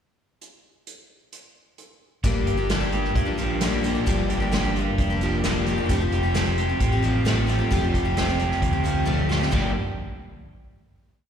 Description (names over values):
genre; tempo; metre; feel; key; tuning
folk rock and heartland rock; 132 BPM; 4/4; straight; G minor; A4 = 438 Hz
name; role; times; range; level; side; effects
unplugged drum kit; drums; 0.4-9.6 s; crash cymbal, hi-hat, kick drum, snare drum, toms; -27 LUFS; right 1 dB; none
picked twelve-string acoustic guitar; accompaniment; 2.2-9.7 s; G2 to G4; -27 LUFS; left 6 dB; slapback echo
crunchy overdriven guitar; riff; 2.2-9.7 s; G2 to G4; -26 LUFS; right 2 dB; slapback echo
fingered electric bass; bass; 2.2-9.7 s; F1 to D2; -25 LUFS; equal; none
room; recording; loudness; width
light reverb, small room ambience; live gig heard through the venue's PA, recital hall reverb; -20 LUFS; side -8 dB against mid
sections
0.4-2.2 pickup bar; 2.2-9.5 verse; 9.5-11.3 final chord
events
drum fill 9.1-9.5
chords
0.4 N.C.; 2.2 Gm7; 5.9 Fadd9; 9.5 Gm7